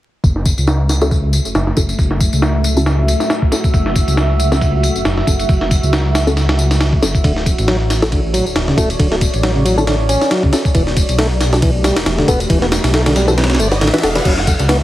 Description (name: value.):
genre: breakbeat, breaks.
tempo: 137 BPM.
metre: 4/4.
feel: swing 56% on 16ths.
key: F# phrygian.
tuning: A4 = 440 Hz.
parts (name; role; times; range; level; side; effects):
deep dark ambient pad; sustained chords; 1.4-14.2 s; A3 to E5; -22 LUFS; equal; chorus, built-in reverb, vintage 12-bit sampler grit, sidechain pumping.
detuned saw bass; bass; 0.2-14.8 s; D1 to C#2; -16 LUFS; equal; none.
breakbeat sampler-style drum kit; drums; 0.2-14.8 s; crash cymbal, kick drum, ride cymbal, snare drum; -16 LUFS; equal; low-pass filter on kick, low-pass filter on cymbals, low-pass filter on snare.
tambourine; drums; 0.2-14.8 s; none; -26 LUFS; left 3 dB; none.
filtered dub chord stab; stabs; 1.0-14.2 s; C#4 to B4; -21 LUFS; left 1 dB; chorus, tape echo.
tonewheel organ; riff; 7.2-14.8 s; C#3 to C#4; -18 LUFS; equal; stopped rotary speaker, overdrive, vintage 12-bit sampler grit, tape echo.
riser; sound effects; 12.3-14.3 s; none; -26 LUFS; equal; none.
room: light reverb, digital ambience.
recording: heavily compressed radio sound, vinyl crackle.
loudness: -12 LUFS.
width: side -14 dB against mid.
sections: 0.2-14.3 A section.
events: filter sweep on drum 0.2-14.3; filter sweep on detuned saw bass 0.2-14.3; riser 12.3-14.3; kick drops out 13.4-14.3.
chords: 0.2 F#m7; 7.2 Dmaj7; 10.7 Em11; 14.3 F#5.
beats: | 0.24 0.68 1.11 1.55 | 1.99 2.43 2.87 3.30 | 3.74 4.18 4.62 5.05 | 5.49 5.93 6.37 6.81 | 7.24 7.68 8.12 8.56 | 9.00 9.43 9.87 10.31 | 10.75 11.19 11.62 12.06 | 12.50 12.94 13.38 13.81 | 14.25 14.69.